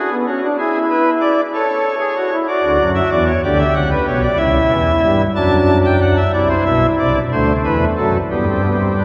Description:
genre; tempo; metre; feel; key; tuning
classical, baroque-style 3-part fugue for pipe organ; 62 BPM (dotted quarters); 6/8; straight; D major; A4 = 439 Hz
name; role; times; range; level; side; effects
pipe organ, cornet; solo; 0.0-9.0 s; B1 to A5; -16 LUFS; equal; none
room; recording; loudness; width
wet cathedral reverb, RT60 5.2 s; heard from further back in the room; -16 LUFS; mono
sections
0.0-6.3 A section; 6.3-9.0 B section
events
none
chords
0.0 Bm7; 0.6 E7; 1.5 A; 2.5 D; 3.5 Em7; 4.4 C#dim; 5.4 D/F#; 6.3 Cmaj9; 7.3 D7; 8.3 G

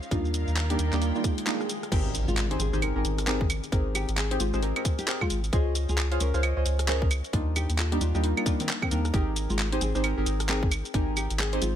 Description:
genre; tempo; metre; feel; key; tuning
UK garage, two-step garage; 133 BPM; 4/4; swing 61% on 16ths; Ab major; A4 = 440 Hz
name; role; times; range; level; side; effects
garage drum kit; drums; 0.0-11.7 s; claves, crash cymbal, handclaps, hi-hat, rim click, shaker; -31 LUFS; right 1 dB; none
warm studio string section; texture; 0.0-1.9 s; Eb3 to G5; -37 LUFS; right 2 dB; sidechain pumping
deep mellow chord stab; stabs; 0.1-11.6 s; G3 to F5; -31 LUFS; right 1 dB; lush chorus, ping-pong delay
soft dub sub bass; bass; 0.1-11.7 s; Ab1 to Eb2; -28 LUFS; equal; none
electronic kick drum; drums; 0.1-11.1 s; none; -27 LUFS; equal; none
swell and impact; sound effects; 1.2-3.7 s; none; -36 LUFS; left 1 dB; none
nylon-string guitar; melody; 1.9-11.8 s; Eb3 to Bb4; -35 LUFS; left 3 dB; ping-pong delay
room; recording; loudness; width
little or no reverb; none; -24 LUFS; side -10 dB against mid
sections
0.0-1.9 A section; 1.9-11.8 B section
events
swell 1.2-1.9; break 1.5-1.9; drop 1.9-11.8; impact 1.9-3.7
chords
0.1 Ebmaj9; 1.9 Abmaj9; 5.5 Dbmaj9; 7.3 Ebmaj9; 9.1 Abmaj9

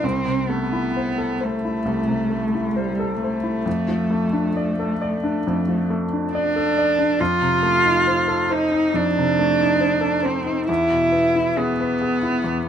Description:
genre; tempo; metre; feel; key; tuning
classical, slow romantic movement for piano trio; 67 BPM; 4/4; rubato; A minor; A4 = 445 Hz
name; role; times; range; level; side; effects
rich cello; second line; 0.0-12.7 s; G3 to F4; -20 LUFS; right 2 dB; none
bright baby grand piano; accompaniment; 0.0-12.7 s; C2 to D5; -22 LUFS; left 2 dB; none
room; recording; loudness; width
moderate studio reverb, RT60 0.7 s; minimal, uncompressed stereo recording; -18 LUFS; side -8 dB against mid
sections
0.0-12.7 A section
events
none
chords
0.0 Am/C; 3.7 Dm/F; 7.2 F7; 10.7 E

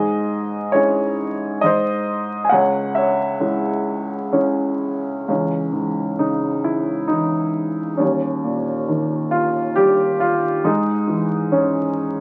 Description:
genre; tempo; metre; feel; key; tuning
classical, lyrical solo piano; 68 BPM; 3/4; rubato; C# minor; A4 = 440 Hz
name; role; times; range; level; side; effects
warm baby grand piano; solo; 0.0-12.2 s; C#2 to G#5; -20 LUFS; equal; none
room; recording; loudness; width
light reverb; very old 78 rpm record, vinyl crackle; -20 LUFS; mono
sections
0.0-5.3 A section; 5.3-12.2 A section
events
none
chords
0.0 C#m/G#; 1.6 G#; 2.5 C#m; 8.0 D#7; 10.6 C#m/G#

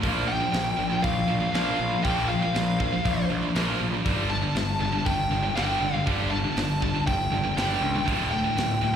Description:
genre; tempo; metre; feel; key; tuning
heavy metal; 120 BPM; 4/4; straight; unclear; A4 = 438 Hz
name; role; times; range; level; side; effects
heavy high-gain guitar; riff; 0.0-9.0 s; D2 to Bb3; -29 LUFS; right 9 dB; distortion, slapback echo
tight distorted guitar; riff; 0.0-8.9 s; D2 to Bb3; -30 LUFS; left 8 dB; distortion, slapback echo
fuzz picked electric bass; bass; 0.0-9.0 s; D1 to C#2; -29 LUFS; right 1 dB; overdrive
tight metal drum kit; drums; 0.0-8.7 s; hi-hat, kick drum, snare drum; -32 LUFS; equal; none
high-gain lead guitar; melody; 0.3-9.0 s; F5 to A5; -28 LUFS; left 1 dB; distortion, slapback echo, ping-pong delay
room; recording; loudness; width
small room reverb; live gig heard through the venue's PA, recital hall reverb; -23 LUFS; side -8 dB against mid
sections
0.0-9.0 A section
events
none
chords
0.0 Bb5; 4.1 G5; 8.1 D5

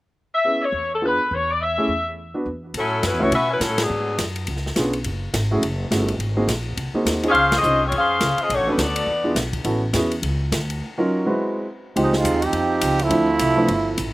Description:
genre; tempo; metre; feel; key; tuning
jazz, big band swing; 208 BPM; 4/4; swing 60% on 8ths; unclear; A4 = 440 Hz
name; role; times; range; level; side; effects
warm saxophone section; melody; 0.3-4.2, 7.3-9.4 s; F#3 to F5; -19 LUFS; left 1 dB; none
warm baby grand piano; accompaniment; 0.4-13.7 s; F3 to B4; -23 LUFS; right 1 dB; none
upright bass; bass; 0.7-14.1 s; F#1 to B2; -26 LUFS; equal; none
swinging big-band drum kit; drums; 2.7-14.1 s; hi-hat, kick drum, ride cymbal, snare drum; -27 LUFS; left 1 dB; none
mellow trombone section; second line; 12.0-14.1 s; E#3 to G4; -19 LUFS; right 3 dB; none
room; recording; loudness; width
little or no reverb; recorded outdoors, with no room sound; -19 LUFS; side -18 dB against mid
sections
0.4-2.8 A section; 2.8-12.0 B section; 12.0-14.1 C section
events
band accent 3.8, 7.5; trombone section solo 12.0-14.1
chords
0.4 E6; 1.0 E13b9; 1.6 Eadd11; 2.2 Esus2; 2.8 A69; 3.9 G#m7b5; 4.5 C#7b9; 5.1 F#m9; 6.2 G#9; 7.4 C#maj7; 8.5 Bm7; 9.1 E7b9; 9.7 A69; 10.8 D#m7; 11.4 G#7alt; 12.0 C#maj9#11; 13.1 Dm9

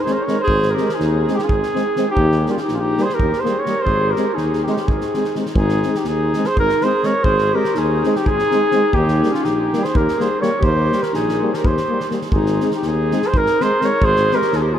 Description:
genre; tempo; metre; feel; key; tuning
balkan folk, Balkan brass band; 248 BPM (eighths); 7/8; straight; Ab major; A4 = 440 Hz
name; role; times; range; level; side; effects
mellow flugelhorn; melody; 0.0-14.8 s; F4 to Db5; -19 LUFS; right 1 dB; none
mellow clarinet; second line; 0.0-14.8 s; Db4 to Bb4; -23 LUFS; left 2 dB; none
dark euphonium; accompaniment; 0.1-14.4 s; Bb3 to C4; -27 LUFS; left 5 dB; none
mellow trombone; accompaniment; 0.1-14.4 s; G3 to Ab3; -27 LUFS; right 4 dB; none
loose indie drum kit; percussion; 0.1-14.6 s; kick drum, snare drum; -24 LUFS; equal; none
mellow tuba; bass; 0.5-14.8 s; Ab1 to Eb2; -21 LUFS; equal; none
room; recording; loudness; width
wet huge ambient reverb, RT60 8.1 s; in a vast, echoing space; -15 LUFS; side -10 dB against mid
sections
0.0-5.6 A section; 5.6-14.8 A section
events
none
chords
0.0 Ab; 2.2 Eb; 3.9 Ab; 8.9 Eb; 12.3 Ab

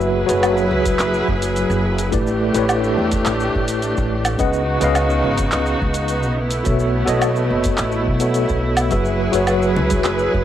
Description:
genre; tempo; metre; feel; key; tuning
sunset chillout; 106 BPM; 4/4; straight; F# minor; A4 = 440 Hz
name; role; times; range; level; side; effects
tine electric piano; accompaniment; 0.0-10.4 s; F#3 to F#5; -20 LUFS; equal; medium stereo tremolo, auto-pan, tape echo
clear studio string section; sustained chords; 0.0-10.4 s; C#3 to B4; -22 LUFS; equal; none
upright bass; bass; 0.0-10.4 s; F#1 to E2; -22 LUFS; equal; none
smooth R&B drum kit; drums; 0.0-10.3 s; handclaps, hi-hat, shaker, woodblock; -24 LUFS; right 1 dB; studio reverb, cassette tape
electronic kick drum; drums; 0.9-10.4 s; none; -23 LUFS; equal; studio reverb, cassette tape
congas; percussion; 9.8-10.0 s; none; -24 LUFS; right 3 dB; none
room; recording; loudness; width
light reverb, small room ambience; home recording on cassette; -16 LUFS; side -11 dB against mid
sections
0.0-10.4 A section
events
none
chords
0.0 F#9sus4; 2.1 A9sus4; 4.4 C#9sus4; 6.4 B9sus4; 8.9 F#9sus4

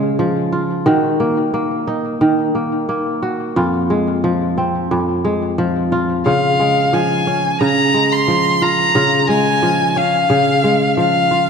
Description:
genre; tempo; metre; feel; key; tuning
folktronica; 89 BPM; 4/4; straight; Db major; A4 = 441 Hz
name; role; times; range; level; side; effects
kora; arpeggios; 0.0-11.5 s; F2 to Gb4; -15 LUFS; equal; ping-pong delay
rich violin; melody; 6.3-11.5 s; F5 to C6; -15 LUFS; left 1 dB; none
room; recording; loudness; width
wet concert hall reverb, RT60 2.3 s; dark, warm production; -14 LUFS; side -6 dB against mid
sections
0.0-11.5 A section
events
none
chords
0.0 Db; 0.9 Ebm; 3.6 Fm; 6.3 Db

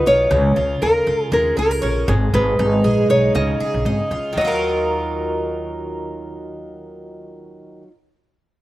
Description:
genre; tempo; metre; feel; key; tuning
acoustic pop; 118 BPM; 4/4; swing 55% on 16ths; Eb minor; A4 = 440 Hz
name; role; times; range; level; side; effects
nylon-string guitar; melody; 0.0-7.8 s; Ab4 to Eb5; -18 LUFS; equal; slapback echo
picked twelve-string acoustic guitar; accompaniment; 0.0-8.0 s; Ab2 to Bb4; -22 LUFS; right 1 dB; none
upright bass; bass; 0.0-7.8 s; Ab1 to Eb2; -22 LUFS; equal; none
room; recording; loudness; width
little or no reverb; recorded outdoors, with no room sound; -16 LUFS; side -16 dB against mid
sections
0.0-4.4 A section; 4.4-8.4 B section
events
none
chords
0.3 Db6; 2.1 Abm; 3.4 Dbadd9; 4.4 Ebmadd9

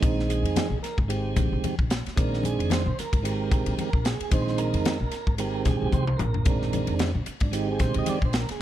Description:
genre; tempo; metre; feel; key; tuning
electric jazz fusion; 112 BPM; 4/4; swing 56% on 16ths; Bb mixolydian; A4 = 440 Hz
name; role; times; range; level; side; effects
mellow tonewheel organ; accompaniment; 0.0-8.6 s; Eb3 to Eb5; -28 LUFS; right 5 dB; slow rotary speaker
upright bass; bass; 0.0-8.5 s; Ab1 to F2; -28 LUFS; left 1 dB; none
crisp fusion drum kit; drums; 0.0-8.6 s; hi-hat, kick drum, ride cymbal, snare drum, toms; -27 LUFS; equal; none
congas; percussion; 0.0-8.4 s; none; -33 LUFS; left 8 dB; none
room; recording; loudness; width
light reverb; dark, warm production; -23 LUFS; side -12 dB against mid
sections
0.0-8.6 A section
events
drum fill 5.9-6.5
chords
0.0 Bb13sus4

